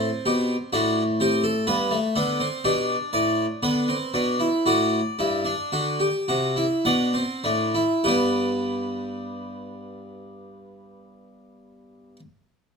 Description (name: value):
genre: classical, baroque-style 3-part fugue for harpsichord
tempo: 49-65 BPM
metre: 4/4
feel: straight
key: G major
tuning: A4 = 440 Hz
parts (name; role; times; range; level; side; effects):
- harpsichord; solo; 0.0-12.2 s; G2 to F#5; -22 LUFS; equal; none
room: moderate studio reverb, RT60 0.8 s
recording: minimal, uncompressed stereo recording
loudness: -21 LUFS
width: side -5 dB against mid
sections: 0.0-8.0 A section; 8.0-12.8 B section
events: slowing down 0.0-8.0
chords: 0.0 F#dim/A; 1.7 G; 5.7 D7; 8.0 G